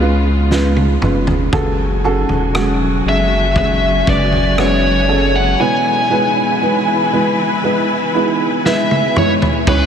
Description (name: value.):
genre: pop ballad.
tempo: 59 BPM.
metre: 4/4.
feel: straight.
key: unclear.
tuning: A4 = 440 Hz.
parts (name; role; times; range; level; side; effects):
felt-muted upright piano; accompaniment; 0.0-9.9 s; G#2 to C#5; -17 LUFS; right 2 dB; lush chorus.
warm studio string section; sustained chords; 0.0-9.9 s; C#3 to G#5; -21 LUFS; left 1 dB; none.
saturated sub bass; bass; 0.0-9.9 s; E1 to C#2; -18 LUFS; equal; none.
loose indie drum kit; drums; 0.5-9.9 s; crash cymbal, kick drum, rim click, snare drum, toms; -21 LUFS; equal; none.
biting lead guitar; melody; 3.1-9.9 s; B4 to G#5; -18 LUFS; left 2 dB; overdrive.
room: wet huge ambient reverb, RT60 7.5 s.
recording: dreamy mix soaked in reverb.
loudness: -12 LUFS.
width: side -8 dB against mid.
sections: 0.0-9.7 A section.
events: drum fill 0.5-1.5, 8.6-9.7.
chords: 0.0 C#7; 1.5 F#madd9; 5.6 E.